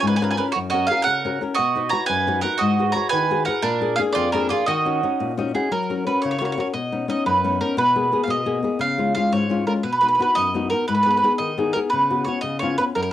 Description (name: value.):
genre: italian folk, Italian serenade.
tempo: 116 BPM (dotted quarters).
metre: 6/8.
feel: straight.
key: Eb minor, F# major from 5.7 s.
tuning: A4 = 440 Hz.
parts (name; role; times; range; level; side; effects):
mandolin; melody; 0.0-13.1 s; Ab4 to Bb5; -21 LUFS; right 2 dB; cassette tape.
mandolin; second line; 0.0-5.3 s; D4 to Db5; -24 LUFS; right 8 dB; none.
flamenco guitar; accompaniment; 0.0-13.1 s; F2 to Gb5; -23 LUFS; left 4 dB; none.
room: wet studio ambience, RT60 0.5 s.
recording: home recording on cassette.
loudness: -18 LUFS.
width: side -12 dB against mid.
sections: 0.0-5.7 A section; 5.7-13.1 B section.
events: nylon-string guitar fill 5.2-5.7.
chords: 0.0 Db6; 0.5 Gb; 1.6 B; 2.6 Abm7; 3.6 Bb7; 4.7 Ebm7; 5.7 F#; 6.7 Badd9; 7.8 G#madd9/B; 8.8 C#; 9.8 B; 10.9 G#m; 11.9 C#7sus4; 12.4 C#7.